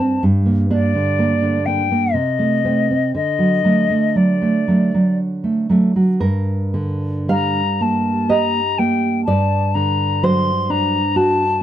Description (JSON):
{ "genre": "romantic duo for flute and classical guitar", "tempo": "60 BPM", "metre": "3/4", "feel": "uneven beats, rubato", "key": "G minor", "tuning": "A4 = 440 Hz", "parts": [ { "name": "concert flute", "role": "melody", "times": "0.0-11.6 s", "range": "D5 to C6", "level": "-20 LUFS", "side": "left 5 dB", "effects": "none" }, { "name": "nylon-string guitar", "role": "accompaniment", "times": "0.0-11.6 s", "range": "G2 to F5", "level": "-16 LUFS", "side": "right 2 dB", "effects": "none" } ], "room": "light reverb", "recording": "dry, close 1970s-style studio recording", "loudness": "-15 LUFS", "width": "side -11 dB against mid", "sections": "0.0-6.2 A section; 6.2-11.6 B section", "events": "none", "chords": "0.2 Gm; 2.2 Adim/C; 3.2 D; 6.2 Gm; 9.3 D7/G", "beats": "| 0.24 1.19 2.15 | 3.15 4.17 5.19 | 6.21 7.30 8.31 | 9.28 10.23 11.16" }